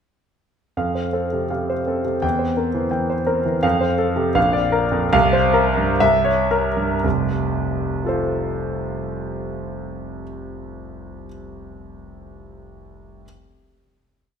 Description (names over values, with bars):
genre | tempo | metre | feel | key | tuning
classical, romantic character piece for solo piano | 56-86 BPM | 2/4 | rubato | F major | A4 = 440 Hz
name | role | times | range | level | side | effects
warm concert grand piano | solo | 0.8-13.3 s | F1 to G5 | -19 LUFS | equal | none
room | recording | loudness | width
wet recital hall reverb, RT60 1.7 s | minimal, uncompressed stereo recording | -18 LUFS | side -7 dB against mid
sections
0.8-7.0 A section; 7.0-11.0 final chord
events
slowing down 2.9-7.0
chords
0.8 F; 2.2 C7/E; 3.6 F; 4.4 Bb; 5.1 C7sus4; 6.0 C7b9; 7.0 F